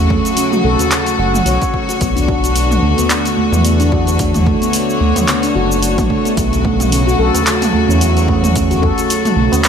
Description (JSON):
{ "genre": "organic downtempo", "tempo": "110 BPM", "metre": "4/4", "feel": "swing 56% on 16ths", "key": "B minor", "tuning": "A4 = 439 Hz", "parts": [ { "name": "rich chamber string section", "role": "sustained chords", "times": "0.0-9.7 s", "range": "C#3 to C#5", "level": "-19 LUFS", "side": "left 2 dB", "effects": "sidechain pumping" }, { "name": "handpan", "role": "arpeggios", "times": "0.0-9.7 s", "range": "A3 to F#5", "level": "-16 LUFS", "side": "equal", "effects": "digital delay" }, { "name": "round analog bass", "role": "bass", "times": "0.0-9.5 s", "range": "F#1 to E2", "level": "-16 LUFS", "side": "equal", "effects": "sidechain pumping" }, { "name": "electronic kick drum", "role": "drums", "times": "0.1-9.0 s", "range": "none", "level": "-21 LUFS", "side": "equal", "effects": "overdrive" }, { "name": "tabla", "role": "percussion", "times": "0.1-9.6 s", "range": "none", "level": "-25 LUFS", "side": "equal", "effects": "none" }, { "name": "deep house drum kit", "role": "drums", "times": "0.3-9.7 s", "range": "handclaps, hi-hat, shaker, toms", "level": "-19 LUFS", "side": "right 1 dB", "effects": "overdrive" } ], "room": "moderate plate reverb, RT60 1.8 s, studio ambience", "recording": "bright 1980s-style digital production", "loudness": "-12 LUFS", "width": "side -7 dB against mid", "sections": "0.0-9.7 A section", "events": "none", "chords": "0.0 F#m; 2.0 Bm7; 6.4 F#m/B" }